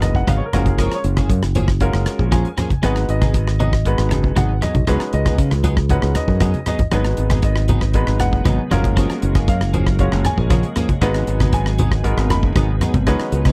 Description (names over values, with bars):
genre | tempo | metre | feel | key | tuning
electric jazz fusion | 117 BPM | 4/4 | straight | G# dorian | A4 = 440 Hz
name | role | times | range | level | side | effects
clear grand piano | accompaniment | 0.0-13.5 s | G#3 to B5 | -26 LUFS | equal | none
clean electric guitar | stabs | 0.0-13.5 s | E#3 to G#4 | -29 LUFS | equal | analog chorus
modern bright fingered electric bass | bass | 0.0-13.5 s | F#1 to C#3 | -21 LUFS | equal | none
damped 70s drum kit | drums | 0.0-13.5 s | hi-hat, kick drum, rim click | -23 LUFS | equal | none
congas | percussion | 0.0-13.5 s | none | -25 LUFS | equal | none
soft additive organ-like pad | sustained chords | 7.4-13.5 s | C#3 to C#4 | -31 LUFS | equal | none
room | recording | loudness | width
little or no reverb | dry, close 1970s-style studio recording | -18 LUFS | mono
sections
0.0-13.5 A section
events
grand piano fill 2.1-2.8; drum fill 6.5-6.9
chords
0.0 G#m7; 0.5 F#maj9; 2.8 G#m7; 4.9 C#9sus4; 6.9 G#m7; 8.7 F#maj9; 11.0 G#m7